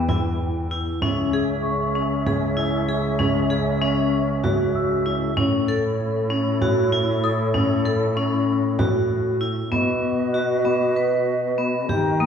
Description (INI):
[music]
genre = contemporary instrumental, chamber music in an uneven meter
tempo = 193 BPM (eighths)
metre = 7/8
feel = straight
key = B mixolydian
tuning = A4 = 442 Hz
[part]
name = breathy mellow small flute group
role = sustained chords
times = 0.0-12.3 s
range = C#4 to G5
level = -26 LUFS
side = equal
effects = none
[part]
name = vibraphone with hard mallets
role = arpeggios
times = 0.0-12.3 s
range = A#3 to B4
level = -23 LUFS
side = left 2 dB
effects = none
[part]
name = muted cello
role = bass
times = 0.0-12.3 s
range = C#2 to D#3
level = -25 LUFS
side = right 1 dB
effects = none
[part]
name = frame drum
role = percussion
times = 0.1-12.2 s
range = none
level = -28 LUFS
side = right 2 dB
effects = none
[part]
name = celesta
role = texture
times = 1.6-12.3 s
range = C#6 to F#6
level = -31 LUFS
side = left 3 dB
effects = none
[sound]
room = wet recital hall reverb, RT60 1.8 s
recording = heard from further back in the room, small room ambience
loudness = -19 LUFS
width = side -7 dB against mid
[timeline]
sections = 0.0-9.7 A section; 9.7-12.3 B section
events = none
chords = 0.0 Em; 1.0 C#m; 5.4 A; 9.7 B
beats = 0.09 0.40 0.71 | 1.02 1.33 1.64 1.95 2.26 2.58 2.88 | 3.20 3.51 3.82 4.13 4.44 4.75 5.06 | 5.37 5.68 5.99 6.30 6.61 6.92 7.23 | 7.54 7.85 8.16 8.47 8.79 9.10 9.41 | 9.72 10.03 10.34 10.65 10.96 11.27 11.58 | 11.89 12.20